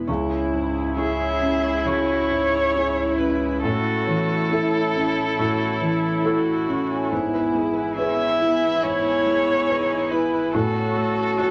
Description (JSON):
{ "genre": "neoclassical piano and strings", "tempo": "69 BPM", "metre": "4/4", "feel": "rubato", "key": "unclear", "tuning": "A4 = 440 Hz", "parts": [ { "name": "dark concert grand piano", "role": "accompaniment", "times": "0.0-11.5 s", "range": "C#2 to C#5", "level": "-28 LUFS", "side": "equal", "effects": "none" }, { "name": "chorused pulse-width pad", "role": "sustained chords", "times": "0.0-11.5 s", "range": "E3 to G#5", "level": "-35 LUFS", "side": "equal", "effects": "none" }, { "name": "muted cello", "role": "second line", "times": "0.1-11.5 s", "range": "B3 to G#4", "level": "-31 LUFS", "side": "equal", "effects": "none" }, { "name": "muted viola", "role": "accompaniment", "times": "0.1-11.5 s", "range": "E4 to F#4", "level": "-31 LUFS", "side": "equal", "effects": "none" }, { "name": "concert harp", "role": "arpeggios", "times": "0.1-11.5 s", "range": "B3 to A5", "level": "-33 LUFS", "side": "equal", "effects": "none" }, { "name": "pure sine sub bass", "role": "bass", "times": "0.1-11.5 s", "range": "G#1 to C#2", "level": "-39 LUFS", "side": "equal", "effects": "none" }, { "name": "muted violin", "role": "melody", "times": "1.0-11.5 s", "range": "A4 to E5", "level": "-26 LUFS", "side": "equal", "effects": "none" } ], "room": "wet studio reverb, RT60 0.6 s", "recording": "none", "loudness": "-22 LUFS", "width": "mono", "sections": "0.1-11.5 A section", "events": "none", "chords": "0.1 C#m; 3.6 A; 7.1 E/G#; 10.5 F#m/A" }